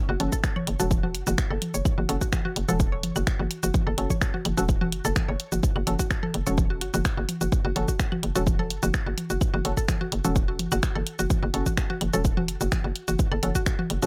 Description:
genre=minimal techno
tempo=127 BPM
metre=4/4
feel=straight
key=F# minor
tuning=A4 = 440 Hz
part: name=mallet-like synth pluck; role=riff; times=0.1-14.1 s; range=F#4 to C#5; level=-36 LUFS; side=equal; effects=chorus, sidechain pumping, dub echo
part: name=hollow knocking FM bass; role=bass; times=0.1-14.1 s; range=E1 to F#1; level=-30 LUFS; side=equal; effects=sidechain pumping
part: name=wavetable chord stab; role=stabs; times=0.2-14.1 s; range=C#4 to A4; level=-35 LUFS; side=equal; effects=dub echo
part: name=house drum kit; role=drums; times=0.2-14.1 s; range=finger snaps, hi-hat, shaker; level=-33 LUFS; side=equal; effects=none
part: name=electronic toms, congas and claves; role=percussion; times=0.2-14.1 s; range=none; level=-35 LUFS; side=equal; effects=dub echo
part: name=electronic kick drum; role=drums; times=0.3-13.8 s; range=none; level=-27 LUFS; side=equal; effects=none
room=little or no reverb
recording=none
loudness=-26 LUFS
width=mono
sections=0.0-14.1 A section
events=none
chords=0.0 F#m

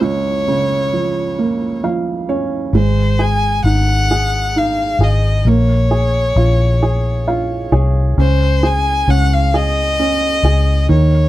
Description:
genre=six-eight pop ballad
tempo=44 BPM (dotted quarters)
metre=6/8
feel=straight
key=Db major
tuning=A4 = 437 Hz
part: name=clear violin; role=melody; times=0.0-11.3 s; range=C5 to Ab5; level=-19 LUFS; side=left 2 dB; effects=none
part: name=felt-muted upright piano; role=accompaniment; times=0.0-11.3 s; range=Db2 to F5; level=-19 LUFS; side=right 4 dB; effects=none
part: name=vintage muted fingered electric bass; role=bass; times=2.7-11.3 s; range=Ab1 to Eb2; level=-14 LUFS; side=left 1 dB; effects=none
room=little or no reverb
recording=dry, close 1970s-style studio recording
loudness=-13 LUFS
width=side -15 dB against mid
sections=0.0-2.7 A section; 2.7-11.3 B section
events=felt piano fill 1.4-2.7, 6.8-8.2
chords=0.0 Gbmaj7; 2.7 Ab5; 5.5 Bbm7; 8.2 Db5

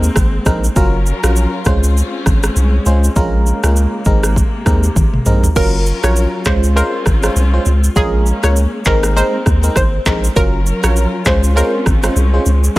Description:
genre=afrobeats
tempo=100 BPM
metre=4/4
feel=swing 58% on 16ths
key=Db major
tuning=A4 = 440 Hz
part: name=barking FM electric piano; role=accompaniment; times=0.0-12.8 s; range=Gb3 to C5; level=-20 LUFS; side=right 1 dB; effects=chorus
part: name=warm studio string section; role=sustained chords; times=0.0-12.8 s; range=C3 to Bb4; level=-24 LUFS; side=left 2 dB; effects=none
part: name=punchy sub bass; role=bass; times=0.0-12.8 s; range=Gb1 to Eb2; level=-14 LUFS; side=equal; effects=none
part: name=afro-pop drum kit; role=drums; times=0.0-12.8 s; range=crash cymbal, handclaps, kick drum, rim click, shaker, toms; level=-17 LUFS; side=equal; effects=overdrive
part: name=analog pluck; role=melody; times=5.6-12.8 s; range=Ab4 to Db5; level=-21 LUFS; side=right 1 dB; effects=chorus, digital delay
room=little or no reverb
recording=none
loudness=-12 LUFS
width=side -18 dB against mid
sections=0.0-5.6 A section; 5.6-12.8 B section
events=drum fill 5.0-5.6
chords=0.0 Abadd9; 0.8 Gbmaj7; 1.7 Dbmaj7; 3.2 Bbm7; 4.1 Abadd9; 5.6 Gbmaj7; 6.5 Dbmaj7; 8.0 Bbm7; 8.9 Abadd9; 10.4 Gbmaj7; 11.3 Dbmaj7

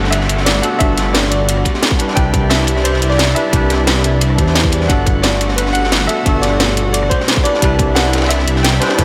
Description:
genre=liquid drum and bass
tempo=176 BPM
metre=4/4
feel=straight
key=G major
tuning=A4 = 435 Hz
part: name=clear grand piano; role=melody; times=0.0-9.0 s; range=B4 to G5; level=-23 LUFS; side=equal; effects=diffuse ambient delay
part: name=tine electric piano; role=accompaniment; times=0.0-9.0 s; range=B2 to C5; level=-24 LUFS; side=equal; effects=analog delay
part: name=lush unison pad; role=sustained chords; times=0.0-9.0 s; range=G3 to F#4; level=-24 LUFS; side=equal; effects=chorus, sidechain pumping
part: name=dark detuned saw bass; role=bass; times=0.0-9.0 s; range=G1 to E2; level=-19 LUFS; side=equal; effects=none
part: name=crunchy breakbeat drum kit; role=drums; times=0.0-9.0 s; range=ride cymbal, snare drum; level=-25 LUFS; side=equal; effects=high-pass filter on cymbals, high-pass filter on snare, high-pass filter on room
part: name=garage drum kit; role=drums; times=0.0-9.0 s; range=hi-hat, rim click, snare drum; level=-20 LUFS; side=equal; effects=none
part: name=downlifter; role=sound effects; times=0.0-2.2 s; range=none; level=-31 LUFS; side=equal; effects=none
part: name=electronic kick drum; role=drums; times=0.8-9.0 s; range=none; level=-18 LUFS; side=equal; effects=none
room=moderate lush hall reverb, RT60 1.5 s, small room reverb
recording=dreamy mix soaked in reverb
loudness=-14 LUFS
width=mono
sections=0.0-9.0 A section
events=none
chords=0.0 Gmaj7; 2.0 Cmaj9; 4.9 Gmaj7; 7.5 Cmaj9

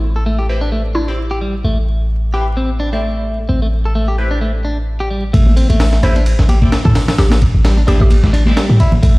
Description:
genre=breakbeat, breaks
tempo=130 BPM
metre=4/4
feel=swing 56% on 16ths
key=A minor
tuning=A4 = 440 Hz
part: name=warm 808-style bass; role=bass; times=0.0-9.2 s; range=A1 to A2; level=-14 LUFS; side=equal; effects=none
part: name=clean electric guitar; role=riff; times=0.2-9.2 s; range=G3 to A4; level=-21 LUFS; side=equal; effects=vintage 12-bit sampler grit, dub echo
part: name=band-passed chord stab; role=stabs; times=0.5-8.5 s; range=C4 to D5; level=-27 LUFS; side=left 1 dB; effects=phaser, lush chorus, dub echo
part: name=mallet-like synth pluck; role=melody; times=0.9-1.3, 6.0-8.1 s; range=E4 to C5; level=-24 LUFS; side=equal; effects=chorus, old record sound, cassette tape, dub echo
part: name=breakbeat sampler-style drum kit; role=drums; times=5.3-9.2 s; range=hi-hat, kick drum, ride cymbal, snare drum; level=-15 LUFS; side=equal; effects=small room ambience
part: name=congas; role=percussion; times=5.3-9.2 s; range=none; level=-21 LUFS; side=equal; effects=none
room=little or no reverb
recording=played on a big sound system in a bare room, stone room reverb, vinyl crackle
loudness=-12 LUFS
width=side -22 dB against mid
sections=0.0-5.3 A section; 5.3-9.2 B section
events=drop 5.3-9.2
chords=0.0 Am7

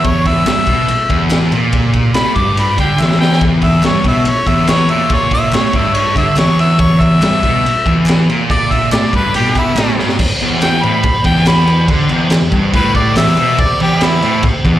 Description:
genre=garage rock duo or trio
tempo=142 BPM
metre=4/4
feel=straight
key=unclear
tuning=A4 = 440 Hz
part: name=clear harmonica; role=melody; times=0.0-14.4 s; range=E4 to D6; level=-16 LUFS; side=left 1 dB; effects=overdrive, slapback echo
part: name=fuzz guitar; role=riff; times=0.0-14.8 s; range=E2 to D3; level=-13 LUFS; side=equal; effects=distortion
part: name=raw garage drum kit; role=drums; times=0.0-14.7 s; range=crash cymbal, kick drum, ride cymbal, snare drum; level=-16 LUFS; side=equal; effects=none
part: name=group handclap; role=percussion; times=0.5-14.1 s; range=none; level=-28 LUFS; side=equal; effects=none
room=light reverb, studio reverb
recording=live gig heard through the venue's PA, recital hall reverb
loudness=-10 LUFS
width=side -13 dB against mid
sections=0.0-10.2 A section; 10.2-14.8 B section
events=drum fill 3.0-3.4, 10.0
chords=0.0 E5

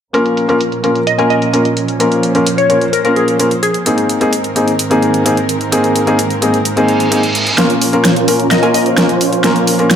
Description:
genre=EDM, festival progressive house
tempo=129 BPM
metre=4/4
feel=straight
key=Bb minor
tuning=A4 = 441 Hz
part: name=felt-muted upright piano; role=accompaniment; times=0.1-9.9 s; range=Bb3 to Bb4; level=-13 LUFS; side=left 1 dB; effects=tape echo
part: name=muted studio string section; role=sustained chords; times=0.1-10.0 s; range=Ab2 to C5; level=-19 LUFS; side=right 2 dB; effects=low-pass filter
part: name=big-room dance drum kit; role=drums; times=0.1-10.0 s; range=hi-hat, snare drum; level=-17 LUFS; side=right 1 dB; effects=overdrive, low-pass filter on hats, studio reverb, low-pass filter on snare
part: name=glassy wavetable pluck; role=melody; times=1.1-3.9, 8.5-9.2 s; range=Ab4 to Ab5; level=-17 LUFS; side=left 2 dB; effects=chorus, tape echo
part: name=reverse cymbal and riser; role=sound effects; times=6.8-10.0 s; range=none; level=-20 LUFS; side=right 3 dB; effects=none
part: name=supersaw chords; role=riff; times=7.6-10.0 s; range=Db4 to C5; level=-16 LUFS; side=right 2 dB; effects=low-pass filter, tape echo
room=moderate lush hall reverb, RT60 1.8 s, digital ambience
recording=none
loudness=-11 LUFS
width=side -8 dB against mid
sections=0.1-7.6 A section; 7.6-10.0 B section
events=filter sweep on string section 0.1-7.6, 7.6-10.0; reverse cymbal 6.8-7.6; build-up 7.6-10.0; drum fill 7.6-10.0; filter sweep on supersaw synth 7.6-10.0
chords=0.1 Bbm; 3.9 Abadd9; 7.6 Bbm

